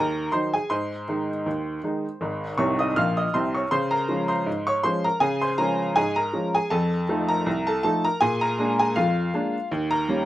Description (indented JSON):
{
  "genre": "ragtime piano",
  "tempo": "80 BPM",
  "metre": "2/4",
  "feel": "swing 54% on 16ths",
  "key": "Db major",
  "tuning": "A4 = 438 Hz",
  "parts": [
    { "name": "bright upright piano", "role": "solo", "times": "0.0-10.3 s", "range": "Ab1 to F6", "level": "-22 LUFS", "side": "equal", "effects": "none" }
  ],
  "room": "light reverb",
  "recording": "none",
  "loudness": "-22 LUFS",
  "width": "side -14 dB against mid",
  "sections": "0.0-10.3 A section",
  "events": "upright piano fill 2.6-3.7",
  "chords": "0.0 Ab7; 0.7 Ab; 3.7 Db; 6.7 F7; 8.2 Bb7; 9.7 Eb7",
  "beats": "| 0.71 1.46 | 2.21 2.96 | 3.72 4.47 | 5.22 5.97 | 6.72 7.47 | 8.21 8.96 | 9.71"
}